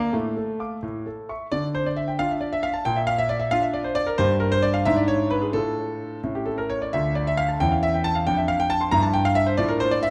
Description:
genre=classical-period piano sonatina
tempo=89 BPM (dotted quarters)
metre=6/8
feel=straight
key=D minor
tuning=A4 = 440 Hz
part: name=warm concert grand piano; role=solo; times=0.0-10.1 s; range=D2 to D6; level=-23 LUFS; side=equal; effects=none
room=wet recital hall reverb, RT60 1.5 s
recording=none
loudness=-23 LUFS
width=mono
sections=0.0-1.5 A section; 1.5-10.1 A section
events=none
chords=0.1 Dm/A; 0.8 A; 1.5 Dm; 2.9 Bb; 4.2 G5; 4.9 E7/G#; 5.5 Dm/A; 6.2 A; 6.9 Dm; 7.6 Em6; 8.3 Dm/F; 8.9 Gm13; 9.6 Dm/A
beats=| 0.14 0.83 | 1.52 2.20 | 2.87 3.53 | 4.19 4.86 | 5.55 6.24 | 6.93 7.61 | 8.27 8.92 | 9.58

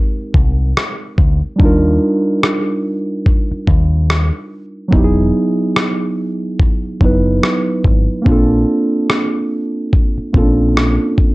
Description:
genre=lo-fi hip hop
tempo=72 BPM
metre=4/4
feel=swing 59% on 16ths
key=unclear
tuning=A4 = 440 Hz
part: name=mellow reed electric piano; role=accompaniment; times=0.0-11.3 s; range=F#3 to B4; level=-16 LUFS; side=right 1 dB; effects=cassette tape
part: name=deep dub fingered electric bass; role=bass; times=0.3-11.0 s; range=E1 to Eb2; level=-15 LUFS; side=equal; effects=none
part: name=dusty soul sampler-style drum kit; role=drums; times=0.3-11.3 s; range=kick drum, rim click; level=-14 LUFS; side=equal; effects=none
room=light reverb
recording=cassette tape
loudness=-12 LUFS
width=side -21 dB against mid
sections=0.0-11.3 A section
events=break 0.0-11.3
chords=0.0 Abmaj9; 1.6 Ebmaj9; 4.9 Emaj9; 8.3 Bbmaj9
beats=0.76 | 1.59 2.43 3.26 4.09 | 4.93 5.76 6.59 7.43 | 8.26 9.09 9.93 10.76

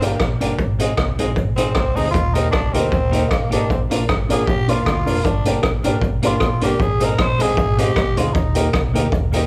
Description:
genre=ska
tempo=155 BPM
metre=4/4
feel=swing 54% on 8ths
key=Eb major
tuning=A4 = 440 Hz
part: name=growling tenor saxophone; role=melody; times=0.0-8.7 s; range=Bb3 to C5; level=-25 LUFS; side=equal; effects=none
part: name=clean electric guitar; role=accompaniment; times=0.0-9.5 s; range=Ab3 to Bb4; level=-29 LUFS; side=equal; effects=tape echo
part: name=clear upright piano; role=stabs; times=0.0-9.4 s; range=D4 to Eb5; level=-28 LUFS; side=equal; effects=none
part: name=hollow-body short-scale fingered electric bass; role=bass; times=0.0-9.5 s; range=F1 to Eb2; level=-26 LUFS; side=equal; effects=none
part: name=raw garage drum kit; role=drums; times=0.0-9.4 s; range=hi-hat, kick drum, rim click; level=-22 LUFS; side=equal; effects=none
part: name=cabasa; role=percussion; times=0.0-9.4 s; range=none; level=-54 LUFS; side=equal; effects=none
room=light reverb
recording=band playing live in one room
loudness=-18 LUFS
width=mono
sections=0.0-9.5 A section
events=tenor saxophone solo 0.0-9.5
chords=0.0 Gm; 0.6 Ab; 2.1 Eb; 3.7 Bb; 5.2 Gm; 6.8 Ab; 8.3 Eb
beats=0.20 | 0.59 0.98 1.37 1.76 | 2.15 2.53 2.92 3.31 | 3.70 4.09 4.47 4.86 | 5.25 5.64 6.02 6.41 | 6.80 7.18 7.57 7.96 | 8.35 8.73 9.12

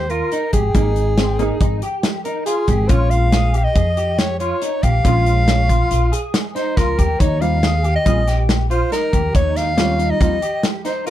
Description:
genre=progressive instrumental, band music in an uneven meter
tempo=140 BPM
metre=5/4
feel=straight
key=Ab major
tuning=A4 = 439 Hz
part: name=breathy soprano saxophone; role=melody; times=0.0-11.1 s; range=Ab4 to F5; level=-21 LUFS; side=equal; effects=none
part: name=electric guitar at the edge of break-up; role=arpeggios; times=0.0-11.1 s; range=C4 to Ab4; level=-24 LUFS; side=equal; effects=ensemble chorus
part: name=upright bass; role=bass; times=0.0-10.4 s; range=Ab1 to F2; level=-18 LUFS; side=equal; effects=none
part: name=modern studio drum kit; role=drums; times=0.1-11.1 s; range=hi-hat, kick drum, snare drum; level=-20 LUFS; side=equal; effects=none
part: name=hollow-body jazz guitar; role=accompaniment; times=0.7-10.4 s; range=G3 to Ab4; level=-22 LUFS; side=equal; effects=double-tracked left and right
room=little or no reverb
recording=none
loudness=-15 LUFS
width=side -12 dB against mid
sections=0.0-11.1 A section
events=none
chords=0.0 Abmaj7(no3); 2.9 Bbm7; 7.2 Eb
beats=0.32 | 0.74 1.18 1.60 2.03 2.46 | 2.89 3.33 3.75 4.18 4.62 | 5.05 5.48 5.91 6.34 6.77 | 7.20 7.63 8.06 8.49 8.92 | 9.35 9.78 10.21 10.64 11.07

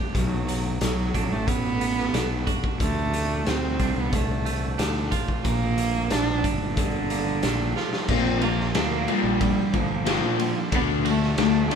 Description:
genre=quiet-loud alternative rock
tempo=91 BPM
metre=4/4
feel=straight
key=unclear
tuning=A4 = 440 Hz
part: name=clean electric guitar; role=arpeggios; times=0.0-11.8 s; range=Bb2 to G4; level=-32 LUFS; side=right 6 dB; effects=none
part: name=fuzz fingered electric bass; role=bass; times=0.1-11.7 s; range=G1 to Bb2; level=-28 LUFS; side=left 1 dB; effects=overdrive
part: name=raw garage drum kit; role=drums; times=0.1-11.8 s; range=crash cymbal, hi-hat, kick drum, ride cymbal, snare drum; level=-27 LUFS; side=left 1 dB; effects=none
part: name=dark cello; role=melody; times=0.2-11.8 s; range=D3 to D4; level=-28 LUFS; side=right 4 dB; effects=none
part: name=overdriven semi-hollow guitar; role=riff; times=8.1-11.8 s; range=Bb2 to D4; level=-24 LUFS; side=left 6 dB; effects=none
room=light reverb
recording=band playing live in one room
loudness=-22 LUFS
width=side -7 dB against mid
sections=0.0-8.1 A section; 8.1-11.8 B section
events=drum fill 7.8-8.1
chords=0.2 Bm; 2.8 Dm; 5.5 Bb; 10.7 D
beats=| 0.15 0.81 1.48 2.14 | 2.80 3.47 4.13 4.79 | 5.45 6.11 6.78 7.43 | 8.10 8.76 9.41 10.07 | 10.73 11.39

